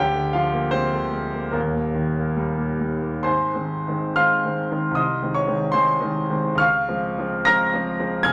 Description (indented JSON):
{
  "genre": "classical, romantic character piece for solo piano",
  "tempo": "72 BPM",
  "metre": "2/4",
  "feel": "uneven beats, rubato",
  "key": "Ab major",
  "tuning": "A4 = 441 Hz",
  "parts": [
    { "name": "clear concert grand piano", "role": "solo", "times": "0.0-8.3 s", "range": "Eb1 to Bb6", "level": "-22 LUFS", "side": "equal", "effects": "none" }
  ],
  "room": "wet large studio reverb, RT60 0.9 s",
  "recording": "none",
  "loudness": "-22 LUFS",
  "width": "mono",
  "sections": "0.0-3.3 A section; 3.3-8.3 B section",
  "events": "none",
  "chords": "0.0 Bb7/D; 1.5 Eb; 3.3 Ab; 5.0 Ab/C; 6.6 Dbmaj7",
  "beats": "0.74 | 1.55 2.39 | 3.25 4.18 | 4.97 5.74 | 6.60 7.47 | 8.26"
}